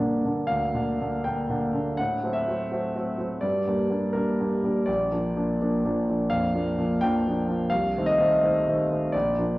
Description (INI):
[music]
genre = classical, romantic character piece for solo piano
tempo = 84 BPM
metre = 4/4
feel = rubato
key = G minor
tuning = A4 = 438 Hz
[part]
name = clear concert grand piano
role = solo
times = 0.0-9.6 s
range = Bb1 to G5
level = -23 LUFS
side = equal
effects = none
[sound]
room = wet recital hall reverb, RT60 1.6 s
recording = worn, warbling old tape, cassette tape, warbly pitch drift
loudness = -23 LUFS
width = side -18 dB against mid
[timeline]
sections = 0.0-9.6 A section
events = none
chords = 0.0 Gm; 2.0 F#dim/A; 3.4 Gm; 4.9 Bb; 7.7 Adim/C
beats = 0.50 1.25 | 1.99 2.73 3.44 4.16 | 4.88 5.59 6.30 7.02 | 7.72 8.44 9.14